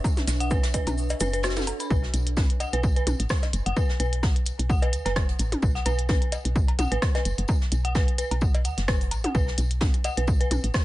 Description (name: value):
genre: minimal techno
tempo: 129 BPM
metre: 4/4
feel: swing 55% on 16ths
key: B minor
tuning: A4 = 439 Hz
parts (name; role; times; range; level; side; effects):
- electronic kick drum; drums; 0.0-10.8 s; none; -24 LUFS; equal; none
- soft brush drum kit; drums; 0.0-10.8 s; hi-hat, snare drum, tambourine; -38 LUFS; equal; sidechain pumping on hats, high-pass filter on hats, high-pass filter on snare, sidechain pumping on perc, high-pass filter on perc, high-pass filter on room
- electronic cowbell and toms; percussion; 0.0-10.6 s; none; -34 LUFS; left 1 dB; tape echo
- flickering grainy texture; texture; 0.0-1.9 s; C#5; -50 LUFS; right 4 dB; none
- warbly tape-like pad; texture; 0.0-1.9 s; D4 to E5; -37 LUFS; right 2 dB; chorus, built-in reverb, sidechain pumping
- cabasa; percussion; 0.1-1.9 s; none; -38 LUFS; right 2 dB; none
- minimal click drum kit; drums; 0.2-10.8 s; hi-hat, rim click; -31 LUFS; equal; none
- woody FM bass; bass; 0.3-10.7 s; F#1 to D2; -27 LUFS; equal; sidechain pumping
- dark detuned synth bell; riff; 0.4-10.4 s; F#4 to B5; -32 LUFS; equal; chorus, sidechain pumping, dub echo
room: studio ambience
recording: nothing above 10.6 kHz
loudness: -22 LUFS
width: side -17 dB against mid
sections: 0.0-1.9 A section; 1.9-10.8 B section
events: break 1.0-1.9; drop 1.9-10.8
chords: 0.0 Bm; 1.9 B5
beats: | 0.04 0.51 0.97 1.44 | 1.91 2.37 2.83 3.30 | 3.77 4.23 4.70 5.16 | 5.63 6.09 6.56 7.02 | 7.49 7.95 8.42 8.88 | 9.35 9.81 10.28 10.74